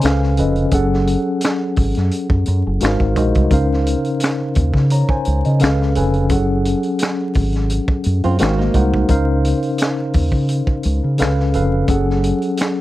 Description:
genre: R&B, neo-soul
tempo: 86 BPM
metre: 4/4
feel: swing 54% on 16ths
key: Db major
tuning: A4 = 440 Hz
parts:
  - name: mellow tine electric piano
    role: accompaniment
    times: 0.0-12.8 s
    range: Db3 to Bb5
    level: -18 LUFS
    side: left 1 dB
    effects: medium stereo tremolo
  - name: deep dub fingered electric bass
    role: bass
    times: 0.0-12.3 s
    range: F1 to Db3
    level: -17 LUFS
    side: equal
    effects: none
  - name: crunchy breakbeat drum kit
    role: drums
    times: 0.0-12.8 s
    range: finger snaps, hi-hat, kick drum, snare drum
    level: -20 LUFS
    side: equal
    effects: none
  - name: nylon-string guitar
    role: second line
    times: 8.2-9.1 s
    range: Bb3 to Gb4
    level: -22 LUFS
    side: right 4 dB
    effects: none
room: little or no reverb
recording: dry, close 1970s-style studio recording, vinyl crackle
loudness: -15 LUFS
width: side -16 dB against mid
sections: 0.0-12.8 A section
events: none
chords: 0.0 Db7b13; 0.7 Gbmadd9; 2.8 Ab13; 3.5 Dbmaj13; 5.6 Db7b13; 6.3 Gbmadd9; 8.4 Ab13; 9.1 Dbmaj13; 11.2 Db7b13; 11.9 Gbmadd9

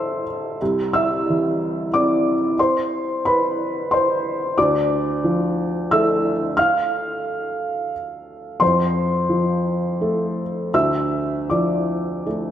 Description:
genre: neoclassical minimalist piano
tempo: 76-92 BPM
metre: 3/4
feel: rubato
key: D dorian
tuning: A4 = 441 Hz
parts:
  - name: felt-muted upright piano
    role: solo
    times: 0.0-12.5 s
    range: C2 to F6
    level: -18 LUFS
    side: equal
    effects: none
room: wet plate reverb, RT60 2.6 s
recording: dreamy mix soaked in reverb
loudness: -18 LUFS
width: side -10 dB against mid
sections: 0.0-12.5 A section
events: none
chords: 0.0 Am; 0.6 C; 4.6 Dm; 8.6 F; 10.7 Dm

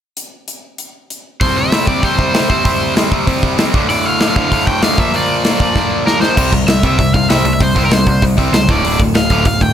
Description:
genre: punk rock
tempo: 194 BPM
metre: 4/4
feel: straight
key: unclear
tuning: A4 = 440 Hz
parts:
  - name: big rock drum kit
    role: drums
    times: 0.2-9.7 s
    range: crash cymbal, hi-hat, kick drum, snare drum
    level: -15 LUFS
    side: equal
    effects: none
  - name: cranked stack guitar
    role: melody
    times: 1.4-9.7 s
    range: Bb4 to G5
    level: -18 LUFS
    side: equal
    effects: overdrive, digital delay
  - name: distorted electric guitar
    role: riff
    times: 1.4-9.7 s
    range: D2 to C4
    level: -16 LUFS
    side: equal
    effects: overdrive
  - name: picked electric bass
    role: bass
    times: 6.4-9.7 s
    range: D1 to C#2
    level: -17 LUFS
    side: equal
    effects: none
room: light reverb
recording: none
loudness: -11 LUFS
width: side -10 dB against mid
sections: 0.2-1.4 A section; 1.4-6.4 B section; 6.4-9.7 C section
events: drum fill 5.8-6.4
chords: 0.2 N.C.; 1.4 C5; 3.7 Dm; 5.0 Bb; 6.4 C; 8.7 Dm

